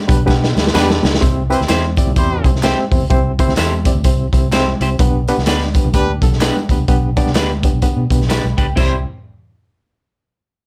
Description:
uptempo 1960s-style soul; 127 BPM; 4/4; swing 60% on 8ths; C major; A4 = 440 Hz
clear horn section; second line; 0.1-9.0 s; G3 to C5; -24 LUFS; equal
barky reed electric piano; accompaniment; 0.1-9.0 s; G3 to B5; -22 LUFS; equal; overdrive, fast tremolo
vintage muted fingered electric bass; bass; 0.1-9.0 s; B1 to B2; -21 LUFS; equal
raw garage drum kit; drums; 0.1-8.9 s; crash cymbal, hi-hat, kick drum, snare drum; -19 LUFS; equal
tambourine and handclaps; percussion; 0.1-9.0 s; -35 LUFS; equal
congas; percussion; 0.3-9.0 s; -33 LUFS; equal
electric guitar at the edge of break-up; stabs; 0.7-8.9 s; B3 to C5; -24 LUFS; equal
light reverb; -15 LUFS; mono
0.0-1.2 A section; 1.2-8.8 B section; 8.8-10.7 C section
drum fill 0.3-1.2
0.0 G/B; 1.2 C; 5.0 G/B; 8.8 C
0.28 0.75 | 1.22 1.69 2.16 2.63 | 3.10 3.57 4.05 4.52 | 4.99 5.46 5.93 6.41 | 6.88 7.35 7.82 8.29 | 8.77

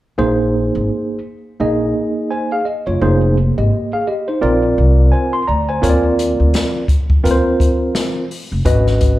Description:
hip hop, jazz-hop; 85 BPM; 4/4; swing 60% on 16ths; A4 = 440 Hz
tine electric piano; accompaniment; 0.2-9.2 s; Bb3 to C6; -16 LUFS; equal; overdrive, fast stereo tremolo
upright bass; bass; 0.2-9.2 s; F1 to Eb2; -16 LUFS; equal
open jazz drum kit; drums; 5.8-9.2 s; hi-hat, kick drum, snare drum; -16 LUFS; equal
light reverb, small room ambience; live gig heard through the venue's PA, club reverb; -13 LUFS; side -16 dB against mid
0.2-9.2 A section
0.2 Gb69 (rootless); 3.0 Fm7; 4.4 Bb; 5.8 Eb5; 8.7 Abm7
| 0.18 0.89 1.59 2.30 | 3.01 3.71 4.42 5.12 | 5.83 6.54 7.24 7.95 | 8.65

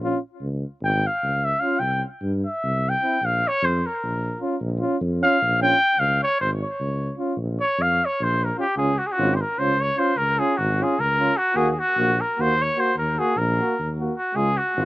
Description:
balkan folk, Balkan brass band; 301 BPM (eighths); 7/8; straight; Bb dorian sharp4, Db major from 8.8 s; A4 = 440 Hz
bright trombone; accompaniment; 0.0-14.8 s; E4 to Gb4; -28 LUFS; left 4 dB
warm euphonium; accompaniment; 0.0-14.8 s; Ab3 to Db4; -27 LUFS; right 4 dB
mellow tuba; bass; 0.0-14.8 s; Ab1 to G2; -26 LUFS; equal
mellow trumpet; melody; 0.8-14.8 s; Gb4 to G5; -21 LUFS; equal
little or no reverb; recorded outdoors, with no room sound; -20 LUFS; side -18 dB against mid
0.0-8.8 A section; 8.8-14.8 B section
trumpet solo 0.0-8.8
0.4 Db; 1.8 C; 3.2 Bbm; 6.0 Db5; 7.4 Bbm; 8.8 Db; 11.6 Ebm; 14.3 Db
0.02 0.22 | 0.41 0.61 0.81 1.01 1.21 1.41 1.61 | 1.81 2.01 2.21 2.40 2.60 2.80 3.00 | 3.20 3.40 3.60 3.80 4.00 4.19 4.39 | 4.59 4.79 4.99 5.19 5.38 5.58 5.78 | 5.98 6.18 6.38 6.58 6.78 6.97 7.17 | 7.37 7.57 7.77 7.97 8.17 8.37 8.57 | 8.77 8.97 9.16 9.36 9.56 9.76 9.96 | 10.16 10.36 10.56 10.76 10.96 11.16 11.36 | 11.56 11.76 11.96 12.16 12.36 12.55 12.75 | 12.95 13.15 13.35 13.55 13.75 13.95 14.15 | 14.35 14.55 14.75

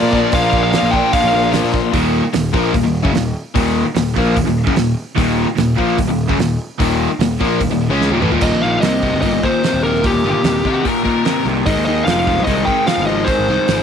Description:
classic rock; 148 BPM; 4/4; straight; Eb major from 8.4 s; A4 = 440 Hz
fuzz lead guitar; melody; 0.0-1.5, 8.4-13.8 s; G4 to G5; -18 LUFS; equal; distortion, slapback echo
picked twelve-string acoustic guitar; accompaniment; 0.0-1.9, 8.4-13.8 s; Ab2 to Bb4; -27 LUFS; right 10 dB
biting overdriven guitar; riff; 0.0-13.8 s; Eb2 to F4; -22 LUFS; right 10 dB; phaser
overdriven electric guitar; riff; 0.0-13.8 s; Eb2 to F4; -18 LUFS; left 10 dB
tight distorted guitar; riff; 0.0-8.4 s; Eb2 to Db4; -22 LUFS; right 1 dB; distortion
fuzz picked electric bass; bass; 0.0-13.8 s; Eb1 to Bb2; -21 LUFS; right 1 dB; overdrive
damped 70s drum kit; drums; 0.1-13.8 s; crash cymbal, hi-hat, kick drum, snare drum, toms; -21 LUFS; right 3 dB
octave-fuzz lead guitar; second line; 10.7-11.4 s; Gb4 to Bb4; -23 LUFS; left 10 dB; distortion
light reverb, studio reverb; 1960s-style stereo with parts hard left and right; -13 LUFS; side -7 dB against mid
0.0-1.9 A section; 1.9-8.4 B section; 8.4-13.8 C section
drum fill 8.0-8.4
0.0 Bb; 1.9 Eb5; 8.4 Eb; 11.7 Ab
| 0.33 0.73 1.13 1.53 | 1.94 2.34 2.74 3.15 | 3.55 3.96 4.36 4.77 | 5.17 5.58 5.99 6.39 | 6.80 7.20 7.61 8.02 | 8.42 8.83 9.24 9.64 | 10.05 10.46 10.86 11.27 | 11.67 12.07 12.48 12.88 | 13.28 13.69

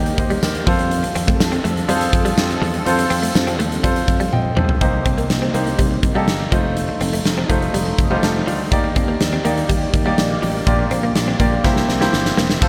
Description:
1980s-style pop; 123 BPM; 4/4; straight; A4 = 440 Hz
clear concert grand piano; accompaniment; 0.0-12.7 s; Bb2 to A5; -24 LUFS; equal
sweeping resonant pad; sustained chords; 0.0-12.7 s; C3 to D5; -29 LUFS; equal; chorus
sustaining fretless electric bass; bass; 0.0-12.7 s; E1 to F2; -26 LUFS; equal
direct-recorded clean electric guitar; riff; 0.1-12.4 s; F3 to C4; -29 LUFS; equal; ensemble chorus, digital delay
huge arena drum kit; drums; 0.1-12.7 s; crash cymbal, hi-hat, kick drum, snare drum, tambourine, toms; -22 LUFS; equal
light reverb, small room ambience; bright 1980s-style digital production; -18 LUFS; mono
0.0-4.8 A section; 4.8-12.6 B section
drum fill 4.3-4.8, 11.6-12.6
0.0 Eb; 0.7 F; 4.8 Cm7; 6.5 F7; 8.7 Ebmaj7; 10.7 Bb6; 11.6 C7
0.42 | 0.91 1.40 1.89 2.38 | 2.86 3.35 3.84 4.33 | 4.82 5.30 5.79 6.28 | 6.77 7.25 7.74 8.23 | 8.72 9.21 9.69 10.18 | 10.67 11.16 11.64 12.13 | 12.62

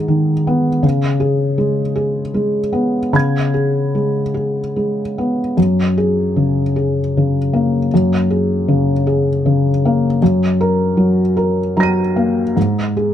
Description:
neoclassical minimalist piano; 77 BPM; 3/4; uneven beats, rubato; A4 = 439 Hz
felt-muted upright piano; solo; 0.0-13.1 s; F#2 to D#7; -14 LUFS; left 1 dB
little or no reverb; close, detailed microphones; -14 LUFS; side -10 dB against mid
0.0-13.1 A section
0.0 G#m; 0.8 C#5; 5.6 F#add9; 10.2 D#m/F#; 12.6 N.C.
0.09 | 0.83 1.58 2.35 | 3.14 3.96 4.77 | 5.57 6.36 7.14 | 7.91 8.67 9.44 | 10.21 10.97 11.75 | 12.56

